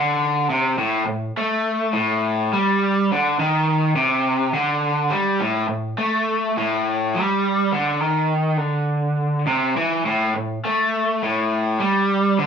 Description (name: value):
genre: rock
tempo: 104 BPM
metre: 4/4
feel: straight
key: unclear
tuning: A4 = 440 Hz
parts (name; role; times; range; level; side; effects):
- raw garage guitar; solo; 0.0-12.5 s; A2 to A3; -18 LUFS; equal; overdrive
room: moderate studio reverb, RT60 0.7 s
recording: band playing live in one room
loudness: -18 LUFS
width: side -7 dB against mid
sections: 0.8-12.5 A section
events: none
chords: none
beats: 0.20 | 0.77 1.35 1.93 2.51 | 3.09 3.67 4.25 4.83 | 5.41 5.99 6.57 7.15 | 7.73 8.31 8.89 9.47 | 10.05 10.63 11.21 11.79 | 12.37